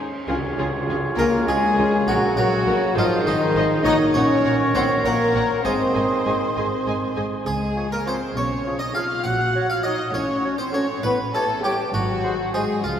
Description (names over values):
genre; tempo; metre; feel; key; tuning
cinematic, playful, whimsical film cue; 67 BPM (dotted quarters); 6/8; straight; Db major; A4 = 440 Hz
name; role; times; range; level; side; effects
warm studio violin section; melody; 0.0-12.8 s; Ab4 to Ab5; -33 LUFS; left 3 dB; none
rich chamber violin section; second line; 0.0-13.0 s; Eb4 to Gb5; -31 LUFS; left 1 dB; none
warm studio viola section; accompaniment; 0.0-12.8 s; F4 to Eb5; -33 LUFS; right 1 dB; none
warm French horn section; sustained chords; 0.0-13.0 s; Eb3 to Gb4; -23 LUFS; left 1 dB; none
rich studio double bass section; bass; 0.0-13.0 s; Ab1 to Eb2; -30 LUFS; right 2 dB; none
warm studio cello section; bass; 0.0-13.0 s; Eb2 to Db3; -32 LUFS; right 2 dB; none
warm clarinet; second line; 0.3-12.7 s; F4 to Bb4; -32 LUFS; equal; none
warm oboe; second line; 0.3-12.6 s; C5 to Eb5; -31 LUFS; right 1 dB; none
mellow bassoon; accompaniment; 0.3-12.6 s; Ab2 to Gb3; -30 LUFS; right 2 dB; none
tam-tam; percussion; 0.3-2.6 s; none; -34 LUFS; left 1 dB; none
harpsichord; melody; 1.2-13.0 s; Eb4 to Gb5; -28 LUFS; equal; none
mellow hollow silver concert flute; second line; 1.2-13.0 s; Eb5 to Gb6; -28 LUFS; equal; none
room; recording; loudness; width
wet church reverb, RT60 3.3 s; none; -19 LUFS; side -9 dB against mid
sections
0.3-13.0 A section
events
band accent 0.3-0.9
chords
0.3 Db; 2.1 Gb; 3.0 Ab; 3.9 Gb/Bb; 5.6 Ab; 7.5 Db; 8.4 Db7/Cb; 9.3 Gb/Bb; 10.1 Gbm/A; 11.0 A7; 11.9 Ab7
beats
| 0.28 1.18 | 2.07 2.96 | 3.85 4.74 | 5.65 6.56 | 7.46 8.36 | 9.26 10.15 | 11.04 11.93 | 12.84